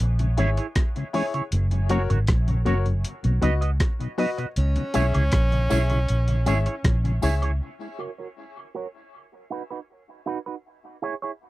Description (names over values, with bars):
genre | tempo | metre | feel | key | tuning
dub reggae | 79 BPM | 4/4 | straight | C# dorian | A4 = 438 Hz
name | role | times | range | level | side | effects
vintage muted fingered electric bass | bass | 0.0-7.6 s | F#1 to C#2 | -22 LUFS | equal | none
boom bap sampler-style drum kit | drums | 0.0-7.6 s | hi-hat, kick drum, rim click | -25 LUFS | equal | none
mellow tonewheel organ | accompaniment | 0.2-7.5 s | F#2 to E4 | -29 LUFS | left 3 dB | chorus vibrato, dub echo
electric guitar with an envelope filter | accompaniment | 0.4-11.3 s | D#4 to D#5 | -32 LUFS | right 6 dB | lush chorus, low-pass filter, dub echo
clear grand piano | stabs | 0.4-7.5 s | E4 to E5 | -32 LUFS | left 4 dB | dub echo
edgy tenor saxophone | melody | 4.6-7.2 s | C#4 | -32 LUFS | equal | dub echo
tambourine and woodblock | percussion | 4.9-7.6 s | none | -42 LUFS | right 1 dB | dub echo
room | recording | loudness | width
little or no reverb | dry, close 1970s-style studio recording | -21 LUFS | side -17 dB against mid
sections
0.0-7.6 A section; 7.6-11.5 B section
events
break 0.0-4.6; filter sweep on clean electric guitar 7.6-11.5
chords
0.0 C#m; 1.5 F#; 3.0 B; 4.6 C#m; 7.6 F#; 9.1 B; 10.6 C#m